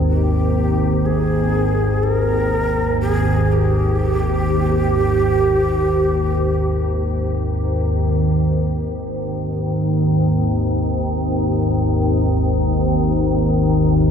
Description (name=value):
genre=dark ambient drone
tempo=free time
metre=none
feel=none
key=unclear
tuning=A4 = 440 Hz
part: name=organ-like drone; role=drone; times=0.0-14.1 s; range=G#1 to D#2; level=-16 LUFS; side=equal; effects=ensemble chorus, built-in reverb
part: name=breathy mellow shakuhachi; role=melody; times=0.1-7.5 s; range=G4 to A#4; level=-21 LUFS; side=right 1 dB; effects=tape echo
room=wet spring reverb, RT60 2.6 s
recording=echo-heavy mix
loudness=-16 LUFS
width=side -7 dB against mid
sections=0.0-8.0 A section; 8.0-14.1 B section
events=none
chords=0.0 G#5